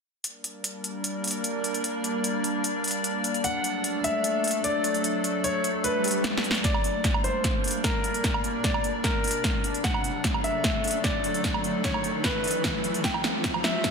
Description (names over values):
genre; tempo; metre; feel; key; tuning
heavy wobble dubstep; 150 BPM; 4/4; half-time; unclear; A4 = 438 Hz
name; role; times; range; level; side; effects
evolving wavetable pad; sustained chords; 0.6-13.9 s; E3 to D5; -30 LUFS; equal; chorus, built-in reverb, sidechain pumping
big-room dance drum kit; drums; 0.2-13.9 s; hi-hat, snare drum, woodblock; -28 LUFS; equal; none
clear grand piano; melody; 3.4-13.9 s; Bb4 to G5; -29 LUFS; left 2 dB; tape echo
swell and riser; sound effects; 5.9-13.9 s; none; -35 LUFS; right 1 dB; none
electronic kick drum; drums; 6.6-13.9 s; none; -30 LUFS; equal; none
room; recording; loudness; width
moderate plate reverb, RT60 1.5 s; dense, heavily limited modern master, high-pass filter; -24 LUFS; side -5 dB against mid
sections
0.2-6.6 A section; 6.6-13.9 B section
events
swell 5.9-6.6; drum fill 6.2-6.6, 6.6-13.9; build-up 6.6-13.9; riser 8.1-13.9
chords
0.2 Gm; 3.4 D; 6.6 Gm; 9.8 D; 13.0 C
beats
| 0.24 0.64 1.04 1.44 | 1.84 2.24 2.64 3.04 | 3.44 3.84 4.24 4.64 | 5.04 5.44 5.84 6.24 | 6.64 7.04 7.44 7.84 | 8.24 8.64 9.04 9.44 | 9.84 10.24 10.64 11.04 | 11.44 11.84 12.24 12.64 | 13.04 13.44 13.84